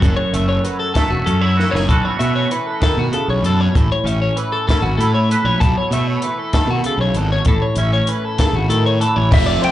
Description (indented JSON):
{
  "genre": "math rock and midwest emo",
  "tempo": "65 BPM (dotted quarters)",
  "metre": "6/8",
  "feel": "straight",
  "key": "unclear",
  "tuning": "A4 = 440 Hz",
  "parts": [
    { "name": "twangy electric guitar", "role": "accompaniment", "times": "0.0-9.3 s", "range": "F#2 to B4", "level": "-22 LUFS", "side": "right 3 dB", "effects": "analog chorus, slapback echo" },
    { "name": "twelve-string electric guitar", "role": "arpeggios", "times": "0.0-9.7 s", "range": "F#4 to E5", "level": "-21 LUFS", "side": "left 4 dB", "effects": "warbly pitch drift, slapback echo" },
    { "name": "fuzz fingered electric bass", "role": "bass", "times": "0.0-9.6 s", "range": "E1 to B2", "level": "-18 LUFS", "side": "equal", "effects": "overdrive" },
    { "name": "compact cocktail drum kit", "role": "drums", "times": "0.0-9.7 s", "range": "crash cymbal, hi-hat, kick drum, ride cymbal, snare drum", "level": "-18 LUFS", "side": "equal", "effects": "none" },
    { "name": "electric guitar through a small old amp", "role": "melody", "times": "9.3-9.7 s", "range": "E5 to G5", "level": "-18 LUFS", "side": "right 1 dB", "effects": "none" },
    { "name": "crunchy overdriven guitar", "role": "riff", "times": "9.3-9.7 s", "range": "F3 to F4", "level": "-19 LUFS", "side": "right 1 dB", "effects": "slapback echo" }
  ],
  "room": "little or no reverb",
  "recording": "live gig heard through the venue's PA, club reverb, nothing above 11.0 kHz",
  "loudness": "-14 LUFS",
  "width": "side -13 dB against mid",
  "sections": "0.0-9.3 A section",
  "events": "drum fill 1.6-1.9",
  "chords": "0.0 F#m7; 1.9 B9sus4; 3.8 Aadd9; 5.6 B9sus4",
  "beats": "| 0.03 0.96 | 1.89 2.82 | 3.75 4.68 | 5.61 6.54 | 7.47 8.39 | 9.31"
}